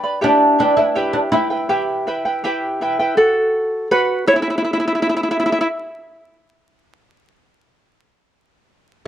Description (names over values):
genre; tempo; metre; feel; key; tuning
andean folk; 81 BPM; 2/4; straight; unclear; A4 = 440 Hz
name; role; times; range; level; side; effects
charango; accompaniment; 0.0-5.7 s; E4 to B5; -17 LUFS; right 1 dB; none
oud; melody; 0.2-2.4 s; D4 to E4; -16 LUFS; equal; none
room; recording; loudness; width
moderate spring reverb, RT60 1.6 s; dark, warm production, vinyl crackle; -15 LUFS; side -11 dB against mid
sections
0.0-3.2 A section; 3.2-9.1 B section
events
charango solo 3.2-9.1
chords
0.2 Em; 3.2 F#madd11; 4.6 N.C.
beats
| 0.22 0.95 | 1.69 2.43 | 3.17 3.91 | 4.64 5.38